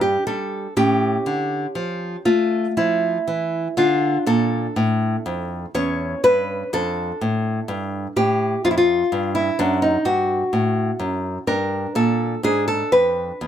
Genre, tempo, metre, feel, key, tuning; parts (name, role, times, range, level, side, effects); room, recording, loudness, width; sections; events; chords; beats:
classical, baroque-style dance for nylon-string guitar; 62 BPM; 3/4; uneven beats, rubato; D minor; A4 = 440 Hz
nylon-string guitar; solo; 0.0-13.5 s; E2 to C#5; -18 LUFS; equal
little or no reverb; close, detailed microphones; -18 LUFS; side -10 dB against mid
0.0-13.5 A section
0.0 Gsus2; 0.8 A7; 3.8 Dm; 5.7 C#dim/E; 6.7 Dm/F; 9.6 F#m6; 11.5 Gm; 12.4 E7 (rootless)
| 0.76 1.75 2.76 | 3.77 4.76 5.74 | 6.72 7.68 8.64 | 9.59 10.52 11.47 | 12.43 13.40